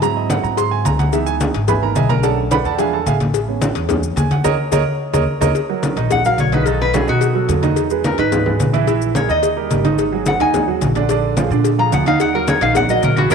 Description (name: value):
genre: Afro-Cuban jazz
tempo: 217 BPM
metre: 4/4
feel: straight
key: Eb minor from 5.6 s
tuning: A4 = 440 Hz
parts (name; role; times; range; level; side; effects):
- warm baby grand piano; accompaniment; 0.0-13.3 s; D3 to B#5; -19 LUFS; right 10 dB; none
- upright bass; bass; 0.0-13.3 s; G#1 to B2; -21 LUFS; left 2 dB; none
- congas; percussion; 0.0-13.3 s; none; -21 LUFS; left 1 dB; none
- cowbell; percussion; 0.0-13.3 s; none; -24 LUFS; left 12 dB; none
- maracas; percussion; 0.0-13.3 s; none; -34 LUFS; left 16 dB; none
- lap resonator guitar; melody; 6.1-13.3 s; F#4 to Bb5; -19 LUFS; left 2 dB; none
room: moderate plate reverb, RT60 2.4 s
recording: 1960s-style stereo with parts hard left and right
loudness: -14 LUFS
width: side -6 dB against mid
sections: 0.0-5.6 A section; 5.6-13.3 A section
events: grand piano solo 0.0-5.6; band accent 4.4-5.6; drum fill 4.9-5.6; resonator guitar played with a steel bar solo 5.6-13.3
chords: 0.0 G#7b13; 1.1 C#m9; 2.2 Bm9; 2.8 E7b9; 3.3 Amaj7; 4.4 D#5; 5.6 Ebm; 6.7 B7; 7.8 Emaj7; 8.9 Dbm69/Bb; 9.4 Eb; 10.0 Ab5; 11.1 Bb7; 12.2 Ebm